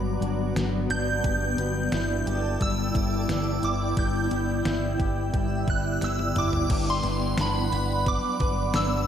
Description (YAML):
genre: dream pop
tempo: 88 BPM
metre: 4/4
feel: straight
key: G major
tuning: A4 = 441 Hz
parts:
  - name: shimmering bell with halo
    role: melody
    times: 0.0-9.1 s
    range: B5 to G6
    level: -30 LUFS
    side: right 1 dB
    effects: ensemble chorus, phaser, tape echo
  - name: granular cloud pad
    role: sustained chords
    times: 0.0-9.1 s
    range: F#3 to G5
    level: -31 LUFS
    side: right 1 dB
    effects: built-in reverb
  - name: clean electric guitar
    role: arpeggios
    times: 0.0-9.1 s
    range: G2 to B4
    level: -30 LUFS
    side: left 4 dB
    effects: lush chorus, tape echo
  - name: picked electric bass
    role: bass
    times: 0.0-9.0 s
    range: G1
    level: -29 LUFS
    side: equal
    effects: none
  - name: detuned 8-bit digital drum machine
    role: drums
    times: 0.2-8.9 s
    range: crash cymbal, hi-hat, kick drum, ride cymbal, snare drum, tambourine, toms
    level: -30 LUFS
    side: equal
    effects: overdrive
  - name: twinkling granular texture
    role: texture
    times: 2.3-7.9 s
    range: A4 to F#5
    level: -41 LUFS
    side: right 1 dB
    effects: built-in reverb, lush chorus, tape echo
room: wet lush hall reverb, RT60 1.7 s, digital ambience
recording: dreamy mix soaked in reverb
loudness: -23 LUFS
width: side -9 dB against mid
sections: 0.0-6.7 A section; 6.7-9.1 B section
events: drum fill 6.0-6.7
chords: 0.0 Gmaj7; 1.2 Em7/G; 6.7 Gmaj7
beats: 0.56 | 1.24 1.93 2.61 3.29 | 3.97 4.65 5.33 6.02 | 6.70 7.38 8.06 8.74